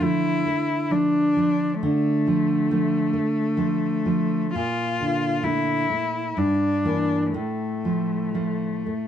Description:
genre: romantic duo for cello and classical guitar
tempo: 58-70 BPM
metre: 3/4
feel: rubato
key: D minor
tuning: A4 = 441 Hz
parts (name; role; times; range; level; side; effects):
- rich cello; melody; 0.0-9.1 s; A3 to F4; -24 LUFS; left 3 dB; plate reverb
- nylon-string guitar; accompaniment; 0.0-9.1 s; G2 to Bb3; -23 LUFS; right 2 dB; none
room: moderate studio reverb, RT60 0.5 s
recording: dark, warm production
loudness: -21 LUFS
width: side -9 dB against mid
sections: 0.0-9.1 A section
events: none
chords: 0.0 Dm; 4.5 Bbmaj7; 6.4 Em7b5/G; 7.4 F/A

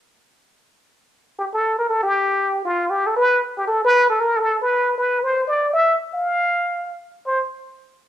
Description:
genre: jazz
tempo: 234 BPM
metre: 4/4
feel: swing 59% on 8ths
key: unclear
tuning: A4 = 440 Hz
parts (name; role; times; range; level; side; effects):
- trumpet with plunger mute; solo; 1.4-7.4 s; F4 to F5; -17 LUFS; equal; none
room: light reverb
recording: band playing live in one room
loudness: -17 LUFS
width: side -11 dB against mid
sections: 0.0-5.2 A section; 5.2-7.2 B section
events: none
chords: none

